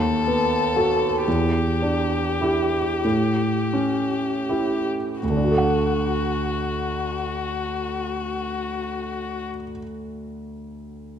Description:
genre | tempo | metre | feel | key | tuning
classical, slow romantic movement for piano quartet | 25-42 BPM (dotted quarters) | 6/8 | rubato | D major | A4 = 440 Hz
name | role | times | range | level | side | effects
warm violin | melody | 0.0-9.5 s | F#4 to A4 | -26 LUFS | left 5 dB | none
clear grand piano | accompaniment | 0.0-11.2 s | D2 to F#5 | -23 LUFS | right 1 dB | none
room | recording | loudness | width
wet scoring stage reverb, RT60 1.8 s | dark, warm production | -21 LUFS | side -8 dB against mid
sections
0.0-5.2 A section; 5.2-9.3 B section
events
slowing down 0.0-5.2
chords
0.0 B7/D#; 1.3 Em7; 3.0 A7; 5.2 D

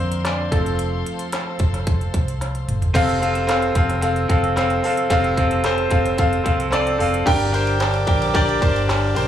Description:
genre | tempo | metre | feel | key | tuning
piano-driven pop | 111 BPM | 4/4 | straight | unclear | A4 = 440 Hz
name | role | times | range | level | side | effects
bright concert grand piano | accompaniment | 0.0-9.3 s | G2 to A5 | -20 LUFS | equal | plate reverb, slapback echo
warm studio string section | sustained chords | 0.0-2.9, 7.3-9.3 s | A4 to D6 | -31 LUFS | left 1 dB | plate reverb
vintage muted fingered electric bass | bass | 0.0-9.3 s | F1 to F2 | -24 LUFS | equal | none
organic electronic drum kit | drums | 0.1-9.3 s | crash cymbal, handclaps, hi-hat, kick drum, ride cymbal, snare drum, toms | -22 LUFS | equal | none
electric guitar through a small old amp | riff | 2.9-7.3 s | F3 to A4 | -28 LUFS | right 2 dB | spring reverb, slapback echo
room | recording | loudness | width
moderate club reverb, RT60 0.6 s | live gig heard through the venue's PA, club reverb | -17 LUFS | side -10 dB against mid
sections
0.0-2.9 A section; 2.9-7.3 B section; 7.3-9.3 C section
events
grand piano solo 0.0-2.9; drum fill 2.4-2.9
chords
0.0 Bbadd9; 0.5 F; 7.3 Gm

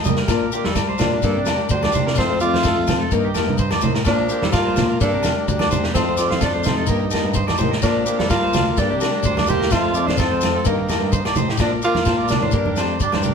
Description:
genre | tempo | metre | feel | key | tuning
highlife guitar band | 127 BPM | 4/4 | straight | Bb major | A4 = 438 Hz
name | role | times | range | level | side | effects
combo organ | sustained chords | 0.0-13.3 s | C5 to Bb5 | -34 LUFS | equal | none
shekere | percussion | 0.0-13.3 s | none | -28 LUFS | left 5 dB | none
fingerpicked acoustic archtop guitar | accompaniment | 0.1-13.3 s | Eb3 to G4 | -27 LUFS | left 6 dB | none
electric guitar at the edge of break-up | arpeggios | 0.1-13.3 s | D4 to F5 | -27 LUFS | right 3 dB | none
barky tine electric piano | bass | 0.1-13.3 s | D2 to G3 | -25 LUFS | equal | overdrive
congas | percussion | 0.1-13.3 s | none | -25 LUFS | right 4 dB | none
vintage drum kit | drums | 0.2-13.2 s | kick drum, snare drum | -23 LUFS | equal | none
agogo bells | percussion | 0.3-13.2 s | none | -29 LUFS | left 9 dB | none
breathy tenor saxophone | melody | 1.0-13.3 s | Bb3 to G4 | -22 LUFS | equal | none
growling tenor saxophone | second line | 1.0-13.3 s | Eb3 to Bb3 | -30 LUFS | right 5 dB | none
room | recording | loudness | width
moderate stone room reverb, RT60 1.0 s | band playing live in one room | -16 LUFS | side -6 dB against mid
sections
0.0-11.6 A section; 11.6-13.3 B section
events
none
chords
0.3 Bb; 1.2 Gm; 2.2 F; 3.1 Eb/G; 4.1 Bb; 5.0 Gm; 5.9 F; 6.9 Eb/G; 7.8 Bb; 8.8 Gm; 9.7 F; 10.7 Eb/G; 11.6 Bb; 12.5 Gm

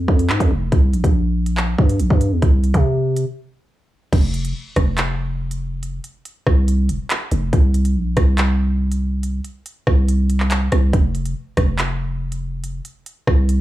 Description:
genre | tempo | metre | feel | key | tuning
hip hop, drill | 141 BPM | 4/4 | half-time | unclear | A4 = 440 Hz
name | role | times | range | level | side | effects
growling 808-style bass | bass | 0.0-13.6 s | E1 to C3 | -18 LUFS | equal | none
drill drum kit | drums | 0.1-13.6 s | crash cymbal, handclaps, hi-hat, kick drum, rim click | -18 LUFS | equal | none
room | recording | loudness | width
little or no reverb | dry, gritty hardware recording, studio reverb | -16 LUFS | side -15 dB against mid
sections
0.0-4.1 A section; 4.1-13.6 B section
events
break 3.3-4.1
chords
none

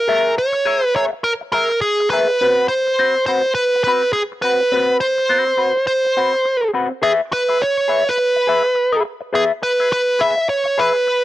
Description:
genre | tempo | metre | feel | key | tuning
funk | 104 BPM | 4/4 | swing 60% on 16ths | unclear | A4 = 440 Hz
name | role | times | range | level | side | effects
nasal lead guitar with a parked wah | melody | 0.0-11.2 s | G#4 to E5 | -16 LUFS | right 1 dB | overdrive
semi-hollow electric guitar | accompaniment | 0.1-11.1 s | B#3 to E5 | -20 LUFS | left 4 dB | wah
room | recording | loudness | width
little or no reverb | dry, close 1970s-style studio recording | -15 LUFS | side -14 dB against mid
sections
0.0-7.0 A section; 7.0-11.2 B section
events
none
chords
0.0 A#m7b5/G#; 2.4 G#7#9/B# (rootless); 7.0 E/G#

